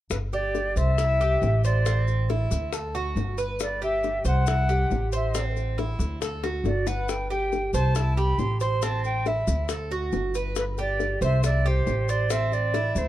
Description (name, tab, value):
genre	latin, Cuban son and guajira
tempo	138 BPM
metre	4/4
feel	straight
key	G major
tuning	A4 = 437 Hz
part	concert flute	melody	0.1-13.1 s	B4 to C6	-28 LUFS	equal	none
part	upright bass	bass	0.1-13.1 s	G1 to D2	-25 LUFS	equal	none
part	bongos	percussion	0.1-13.1 s	none	-34 LUFS	left 7 dB	none
part	maracas	percussion	0.1-13.1 s	none	-40 LUFS	left 8 dB	none
part	Cuban tres	arpeggios	0.3-13.1 s	C4 to C5	-30 LUFS	right 4 dB	none
room	little or no reverb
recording	dark, warm production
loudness	-22 LUFS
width	side -14 dB against mid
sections	0.1-13.1 A section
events	drum fill 6.4-7.1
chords	0.1 G5; 1.0 C; 1.9 Am; 2.7 D; 3.6 G; 4.5 C; 5.3 Am; 6.2 D; 7.1 G; 8.0 C; 8.8 Am; 9.7 D; 10.6 G; 11.4 C; 12.3 Am